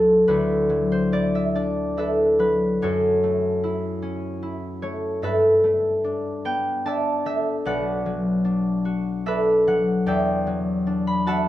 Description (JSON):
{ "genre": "classical, solo harp piece", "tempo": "74 BPM", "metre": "3/4", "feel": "rubato", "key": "D major", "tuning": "A4 = 438 Hz", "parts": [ { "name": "concert harp", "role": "solo", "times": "0.0-11.5 s", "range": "B1 to D6", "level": "-20 LUFS", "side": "equal", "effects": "none" } ], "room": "light reverb", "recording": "dark, warm production", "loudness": "-20 LUFS", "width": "side -13 dB against mid", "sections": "0.3-11.5 A section", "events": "none", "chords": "0.3 D69; 2.8 F#m7; 5.2 G69; 7.7 Bm7; 10.1 Em11", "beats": "| 0.27 1.12 1.96 | 2.80 3.62 4.42 | 5.23 6.04 6.86 | 7.67 8.46 9.27 | 10.08 10.88" }